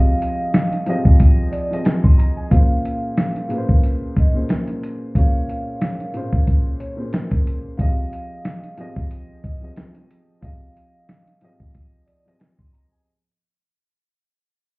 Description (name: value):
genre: hip hop, boom-bap hip-hop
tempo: 91 BPM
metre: 4/4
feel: swing 57% on 16ths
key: unclear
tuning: A4 = 440 Hz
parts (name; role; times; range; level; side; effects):
- vibraphone with soft mallets; melody; 0.0-12.2 s; Db5 to F5; -29 LUFS; right 1 dB; high-pass filter, low-pass filter
- dark grand piano; accompaniment; 0.0-13.2 s; Bb2 to C6; -25 LUFS; equal; high-pass filter, low-pass filter
- dusty soul sampler-style drum kit; drums; 0.2-12.9 s; hi-hat, kick drum, snare drum; -16 LUFS; equal; none
room: light reverb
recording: heard muffled through a wall, club reverb, vinyl crackle, EQ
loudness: -16 LUFS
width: side -26 dB against mid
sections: 0.0-13.1 A section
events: fade-out 0.4-13.1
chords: 0.0 Fm7; 2.5 Bbm7; 7.8 Fm7